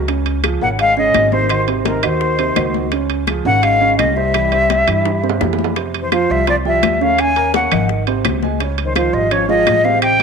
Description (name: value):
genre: Afro-Cuban jazz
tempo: 169 BPM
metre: 4/4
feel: straight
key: unclear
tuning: A4 = 441 Hz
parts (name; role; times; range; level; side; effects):
- upright bass; bass; 0.0-10.2 s; Ab1 to G2; -22 LUFS; left 1 dB; none
- warm upright piano; accompaniment; 0.1-10.2 s; C3 to Db6; -20 LUFS; right 10 dB; none
- bongos; percussion; 0.1-10.2 s; none; -28 LUFS; left 14 dB; none
- congas; percussion; 0.1-10.2 s; none; -24 LUFS; left 14 dB; none
- timbales; percussion; 0.1-10.2 s; none; -24 LUFS; right 13 dB; none
- claves; percussion; 0.4-10.2 s; none; -28 LUFS; left 15 dB; none
- silver concert flute; melody; 0.6-10.2 s; Bb4 to Ab5; -16 LUFS; left 2 dB; none
- breathy trombone; second line; 0.6-10.2 s; Eb3 to Db4; -24 LUFS; left 10 dB; none
room: wet spring reverb, RT60 1.6 s, small room ambience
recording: 1960s-style stereo with parts hard left and right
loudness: -13 LUFS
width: side -5 dB against mid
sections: 0.0-5.8 A section; 5.8-10.2 B section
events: drum fill 5.1-5.8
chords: 0.1 Dbmaj7; 1.5 Ab7; 2.9 Db; 4.3 C; 5.8 Fsus2; 7.2 Ebm7; 7.9 Ab; 8.6 Dbmaj9